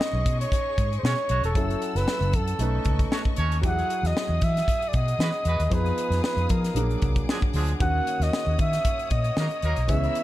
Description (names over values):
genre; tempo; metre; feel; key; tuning
polished 1980s jazz-funk pop; 115 BPM; 4/4; swing 54% on 16ths; B major; A4 = 441 Hz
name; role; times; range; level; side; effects
mellow flugelhorn; melody; 0.0-10.2 s; A4 to F#5; -28 LUFS; right 1 dB; none
warm concert grand piano; accompaniment; 0.0-10.2 s; D#3 to B4; -33 LUFS; equal; wide subtle chorus
rich studio string section; sustained chords; 0.0-10.2 s; G#4 to E6; -37 LUFS; left 4 dB; none
crisp fusion drum kit; drums; 0.0-10.2 s; hi-hat, kick drum, snare drum; -27 LUFS; equal; none
vintage muted fingered electric bass; bass; 0.1-10.1 s; E1 to F3; -25 LUFS; equal; none
clear horn section; second line; 1.0-9.8 s; E#3 to C#5; -34 LUFS; right 3 dB; ping-pong delay
room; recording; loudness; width
light reverb, small room ambience; dark, warm production; -22 LUFS; side -15 dB against mid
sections
0.0-10.2 A section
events
none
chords
0.0 B69; 1.6 F#m7; 2.6 B9; 3.6 Emaj9; 5.7 Fm7b5; 6.8 A#7b13; 7.8 D#m7